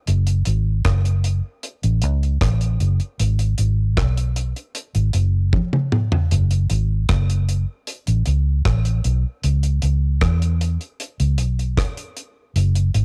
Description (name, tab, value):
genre	lovers rock reggae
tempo	77 BPM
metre	4/4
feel	straight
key	F# minor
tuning	A4 = 443 Hz
part	vintage muted fingered electric bass	bass	0.1-13.0 s	F#1 to E2	-20 LUFS	equal	tube saturation
part	deep reggae drum kit	drums	0.1-13.0 s	hi-hat, kick drum, rim click, toms	-24 LUFS	equal	none
room	little or no reverb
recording	home recording on cassette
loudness	-20 LUFS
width	mono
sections	0.0-13.0 A section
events	drum fill 5.5-6.3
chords	none